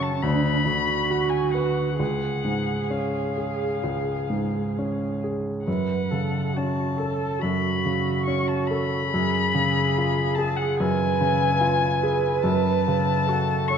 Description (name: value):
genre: classical, slow romantic movement for piano trio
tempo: 64-74 BPM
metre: 4/4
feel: rubato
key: F# minor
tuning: A4 = 440 Hz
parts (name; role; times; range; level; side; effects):
- muted violin; melody; 0.0-13.8 s; E#5 to C#6; -27 LUFS; left 7 dB; none
- muted cello; second line; 0.0-13.8 s; C#4 to B4; -28 LUFS; right 7 dB; none
- clear baby grand piano; accompaniment; 0.0-13.8 s; C#2 to C#5; -24 LUFS; equal; none
room: wet recital hall reverb, RT60 1.4 s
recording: dark, warm production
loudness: -21 LUFS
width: side -7 dB against mid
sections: 0.0-13.8 A section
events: none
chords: 0.2 Bm/D; 2.0 C#; 5.7 F#m; 9.1 C#7/F#; 12.4 F#m